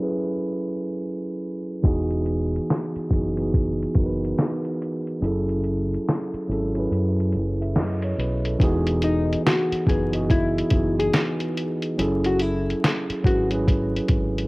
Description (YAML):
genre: lo-fi hip hop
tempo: 71 BPM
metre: 4/4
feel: swing 63% on 16ths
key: E major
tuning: A4 = 440 Hz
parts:
  - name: mellow tine electric piano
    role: accompaniment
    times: 0.0-14.5 s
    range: E3 to E5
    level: -25 LUFS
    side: right 1 dB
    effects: cassette tape
  - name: deep dub fingered electric bass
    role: bass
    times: 1.8-14.5 s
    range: E1 to F#2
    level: -26 LUFS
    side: equal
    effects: none
  - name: lo-fi sampler-style drum kit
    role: drums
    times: 1.8-14.5 s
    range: hi-hat, kick drum, snare drum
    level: -22 LUFS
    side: equal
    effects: cassette tape
  - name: hollow-body jazz guitar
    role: melody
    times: 9.0-13.5 s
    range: D#4 to G#4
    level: -26 LUFS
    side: left 2 dB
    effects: cassette tape
room: light reverb, digital ambience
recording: home recording on cassette, vinyl crackle, low-pass filter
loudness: -21 LUFS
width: side -23 dB against mid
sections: 0.0-8.6 A section; 8.6-14.5 B section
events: filter sweep 0.0-8.6; kick muted 5.2-8.6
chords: 0.0 F#m9; 1.8 Emaj9; 5.2 F#m9; 8.6 Emaj9; 12.0 F#m9